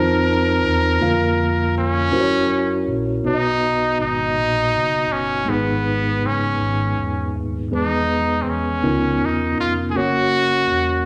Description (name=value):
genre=slow gospel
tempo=54 BPM (dotted quarters)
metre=6/8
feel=straight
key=B major from 3.2 s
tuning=A4 = 440 Hz
part: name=brilliant trumpet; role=melody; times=0.0-11.1 s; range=B3 to Bb4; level=-23 LUFS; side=equal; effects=none
part: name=mellow tine electric piano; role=accompaniment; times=0.0-11.1 s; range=G#2 to A5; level=-23 LUFS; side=equal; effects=none
part: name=fingered electric bass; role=bass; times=0.0-11.0 s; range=D#1 to Gb2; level=-28 LUFS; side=equal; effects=none
room=wet large studio reverb, RT60 1.3 s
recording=none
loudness=-19 LUFS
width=mono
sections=0.0-3.2 A section; 3.2-11.1 B section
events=none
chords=0.0 F7; 1.0 Bb/F; 2.1 Gb7; 3.2 B; 5.5 G#m; 7.7 E; 8.8 C#13; 10.0 F#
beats=| 1.02 2.13 | 3.25 4.37 | 5.48 6.60 | 7.72 8.84 | 9.96